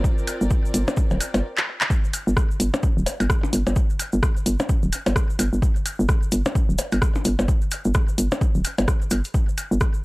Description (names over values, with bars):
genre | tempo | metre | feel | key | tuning
minimal techno | 129 BPM | 4/4 | swing 59% on 16ths | G minor | A4 = 441 Hz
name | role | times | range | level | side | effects
electronic kick drum | drums | 0.0-9.9 s | none | -21 LUFS | equal | overdrive
cabasa | percussion | 0.0-10.0 s | none | -34 LUFS | right 1 dB | none
dark chamber string section | texture | 0.0-1.4 s | C4 to D5 | -34 LUFS | equal | sidechain pumping
garage drum kit | drums | 0.3-9.9 s | handclaps, hi-hat, rim click | -26 LUFS | equal | none
percussion blips | percussion | 0.3-9.7 s | none | -28 LUFS | left 1 dB | tape echo
hollow knocking FM bass | bass | 0.4-9.8 s | D1 to G1 | -21 LUFS | equal | sidechain pumping
room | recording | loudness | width
little or no reverb | dry, gritty hardware recording | -19 LUFS | side -22 dB against mid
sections
0.0-1.9 A section; 1.9-10.0 B section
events
drum fill 1.6-1.9; drop 1.9-10.0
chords
0.0 Gm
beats
| 0.04 0.51 0.97 1.44 | 1.90 2.37 2.83 3.30 | 3.76 4.23 4.69 5.16 | 5.62 6.09 6.55 7.02 | 7.48 7.95 8.41 8.88 | 9.34 9.81